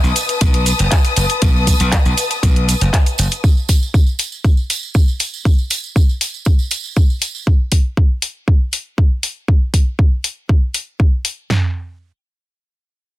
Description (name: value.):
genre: nu-disco, nu disco.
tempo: 119 BPM.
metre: 4/4.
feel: straight.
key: B mixolydian.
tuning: A4 = 440 Hz.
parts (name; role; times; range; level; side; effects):
warm symphonic string section; sustained chords; 0.0-3.4 s; B4 to D#6; -21 LUFS; left 4 dB; sidechain pumping.
glassy slap bass; bass; 0.0-3.3 s; F#1 to B1; -16 LUFS; equal; none.
house drum kit; drums; 0.0-11.4 s; handclaps, hi-hat, shaker; -19 LUFS; left 1 dB; none.
tambourine; percussion; 0.1-7.4 s; none; -26 LUFS; right 8 dB; none.
house drum kit; drums; 0.4-11.6 s; kick drum, snare drum, toms; -13 LUFS; equal; none.
room: little or no reverb.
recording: dense, heavily limited modern master.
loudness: -13 LUFS.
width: side -16 dB against mid.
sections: 0.0-11.5 A section; 11.5-13.2 B section.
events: none.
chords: 0.0 B7; 3.4 N.C..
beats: 0.41 0.91 | 1.42 1.92 2.43 2.93 | 3.43 3.94 4.44 4.95 | 5.45 5.96 6.46 6.96 | 7.47 7.97 8.48 8.98 | 9.48 9.99 10.49 11.00 | 11.50.